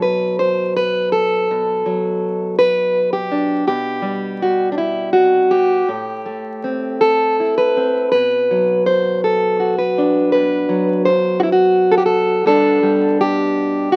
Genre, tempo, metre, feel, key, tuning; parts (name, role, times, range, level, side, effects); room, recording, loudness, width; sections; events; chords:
folk, solo fingerstyle acoustic guitar; 82 BPM; 3/4; rubato; A4 = 440 Hz
fingerpicked plugged-in steel-string acoustic guitar; solo; 0.0-14.0 s; A2 to C5; -17 LUFS; equal
moderate studio reverb, RT60 0.6 s; very old 78 rpm record, vinyl crackle; -17 LUFS; mono
0.0-14.0 A section
0.0 B7(no3); 3.7 Gmaj7/B; 5.9 Am7; 8.1 Bm; 12.5 G/B